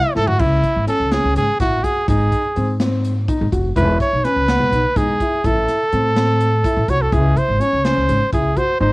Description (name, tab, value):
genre	progressive instrumental, band music in an uneven meter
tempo	250 BPM (eighths)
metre	7/8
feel	straight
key	C# harmonic minor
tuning	A4 = 440 Hz
part	clear trumpet	melody	0.0-8.9 s	E4 to F#5	-18 LUFS	right 1 dB	cassette tape
part	felt-muted upright piano	arpeggios	0.0-8.9 s	B3 to F#4	-23 LUFS	left 2 dB	cassette tape
part	upright bass	bass	0.2-8.9 s	E1 to A2	-19 LUFS	equal	none
part	swinging big-band drum kit	drums	0.2-8.7 s	crash cymbal, hi-hat, kick drum, snare drum, toms	-24 LUFS	equal	cassette tape
room	little or no reverb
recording	home recording on cassette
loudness	-15 LUFS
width	side -22 dB against mid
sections	0.4-8.9 A section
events	drum fill 0.2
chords	0.4 C#m; 2.1 G#; 3.8 E; 5.4 Am; 7.1 C#m